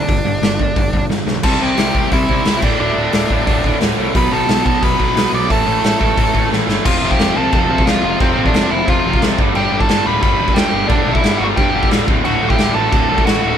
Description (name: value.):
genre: punk rock.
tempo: 178 BPM.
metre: 4/4.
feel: straight.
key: unclear.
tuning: A4 = 441 Hz.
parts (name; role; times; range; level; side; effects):
nasal lead guitar with a parked wah; melody; 0.0-13.6 s; C4 to D6; -19 LUFS; right 1 dB; overdrive.
distorted electric guitar; riff; 0.0-13.6 s; D2 to C4; -18 LUFS; equal; overdrive.
fuzz picked electric bass; bass; 0.1-13.5 s; D1 to G2; -23 LUFS; equal; overdrive.
raw garage drum kit; drums; 0.1-13.3 s; crash cymbal, hi-hat, kick drum, snare drum; -17 LUFS; equal; none.
room: light reverb.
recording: band playing live in one room.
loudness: -13 LUFS.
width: side -9 dB against mid.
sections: 0.0-1.4 A section; 1.4-6.9 B section; 6.9-13.6 C section.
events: drum fill 1.1-1.4, 6.5-6.9.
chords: 0.0 G5; 1.4 C; 2.6 D5; 4.1 Bm; 5.5 A5; 6.9 F; 9.4 G; 12.1 D.